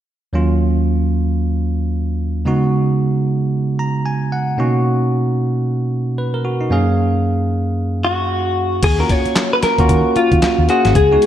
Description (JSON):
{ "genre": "R&B, new jack swing", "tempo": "113 BPM", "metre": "4/4", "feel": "swing 60% on 16ths", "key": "Eb minor", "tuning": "A4 = 440 Hz", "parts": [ { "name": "bell-like tine electric piano", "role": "accompaniment", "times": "0.3-11.3 s", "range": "Eb2 to Bb5", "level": "-16 LUFS", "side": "right 1 dB", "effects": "none" }, { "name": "direct-recorded clean electric guitar", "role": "melody", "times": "8.0-11.3 s", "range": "F4 to Db5", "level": "-15 LUFS", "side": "left 2 dB", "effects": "lush chorus" }, { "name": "vintage muted fingered electric bass", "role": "bass", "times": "8.8-11.2 s", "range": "Ab1 to Eb3", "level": "-17 LUFS", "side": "left 1 dB", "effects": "none" }, { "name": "boom bap sampler-style drum kit", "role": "drums", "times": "8.8-11.3 s", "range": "crash cymbal, handclaps, hi-hat, kick drum, snare drum", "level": "-18 LUFS", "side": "left 1 dB", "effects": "none" } ], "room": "wet echo chamber reverb, RT60 2.1 s", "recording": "dark, warm production", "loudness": "-15 LUFS", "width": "side -10 dB against mid", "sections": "0.3-8.8 A section; 8.8-11.3 B section", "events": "tine electric piano fill 3.5-4.6", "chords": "0.3 Ebm9; 2.5 Db7sus4; 4.6 Bmaj7; 6.7 Gbmaj9; 8.8 Ebm9", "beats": "| 0.33 0.86 1.40 1.93 | 2.46 2.99 3.52 4.05 | 4.58 5.11 5.64 6.17 | 6.70 7.24 7.77 8.30 | 8.83 9.36 9.89 10.42 | 10.95" }